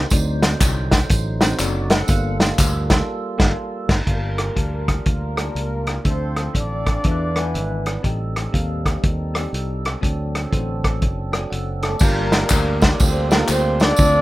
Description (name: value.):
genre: uptempo gospel.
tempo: 121 BPM.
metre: 4/4.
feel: swing 64% on 8ths.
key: G minor.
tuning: A4 = 438 Hz.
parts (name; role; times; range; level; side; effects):
mellow horn section; melody; 0.0-0.1, 4.1-7.9, 11.8-14.2 s; A3 to D5; -24 LUFS; equal; none.
tonewheel organ; sustained chords; 0.0-14.2 s; D3 to F#5; -29 LUFS; right 3 dB; slow rotary speaker.
fingered electric bass; bass; 0.0-14.2 s; F#1 to E2; -23 LUFS; equal; none.
bell-like tine electric piano; accompaniment; 0.1-14.2 s; G2 to D6; -29 LUFS; left 2 dB; medium stereo tremolo.
warm soul drum kit; drums; 0.1-14.1 s; crash cymbal, hi-hat, kick drum, ride cymbal, rim click, snare drum; -18 LUFS; equal; none.
tambourine and handclaps; percussion; 0.1-3.0, 12.0-14.1 s; none; -27 LUFS; equal; none.
room: light reverb.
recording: rough home demo mix.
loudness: -17 LUFS.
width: side -17 dB against mid.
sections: 0.0-4.1 A section; 4.1-12.0 B section; 12.0-14.2 A section.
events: band accent 3.1-4.1; tine electric piano fill 7.0-8.0, 11.0-12.0.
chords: 0.1 D7b9; 2.1 Gm9; 6.1 Dm7; 7.0 E7; 8.0 Am7b5; 10.0 D7; 12.0 Gm9.